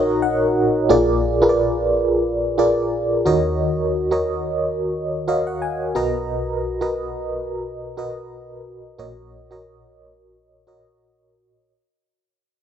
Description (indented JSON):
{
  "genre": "pop",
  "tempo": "89 BPM",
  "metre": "4/4",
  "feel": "swing 55% on 16ths",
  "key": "unclear",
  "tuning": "A4 = 438 Hz",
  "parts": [
    { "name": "FM electric piano with tremolo", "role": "solo", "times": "0.0-11.7 s", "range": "Bb1 to Bb5", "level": "-18 LUFS", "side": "equal", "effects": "phaser" }
  ],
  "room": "moderate plate reverb, RT60 3.0 s",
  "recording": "none",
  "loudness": "-18 LUFS",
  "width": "side -9 dB against mid",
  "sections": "0.9-11.7 A section",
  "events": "FM electric piano fill 0.0-0.9, 4.9-6.3; fade-out 0.9-11.7",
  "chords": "0.0 Gb6/Bb; 0.9 Bb7; 3.3 Ebm7; 6.0 Bmaj7; 9.0 Gb6/Bb"
}